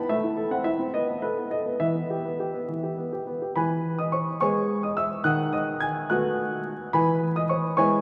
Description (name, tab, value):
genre	classical-period piano sonatina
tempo	71 BPM (dotted quarters)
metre	6/8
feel	straight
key	E minor, E major from 3.6 s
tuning	A4 = 437 Hz
part	clear grand piano	solo	0.0-8.0 s	D#3 to G#6	-26 LUFS	equal	none
room	wet cathedral reverb, RT60 5.1 s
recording	recorded in a church or concert hall, vinyl crackle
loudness	-26 LUFS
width	mono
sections	0.0-3.6 A section; 3.6-8.0 A section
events	none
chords	0.1 Am; 0.9 B7; 1.8 Em; 3.6 E; 5.3 B7/D#; 6.9 E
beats	| 0.09 0.94 | 1.81 2.69 | 3.56 4.41 | 5.25 6.09 | 6.94 7.78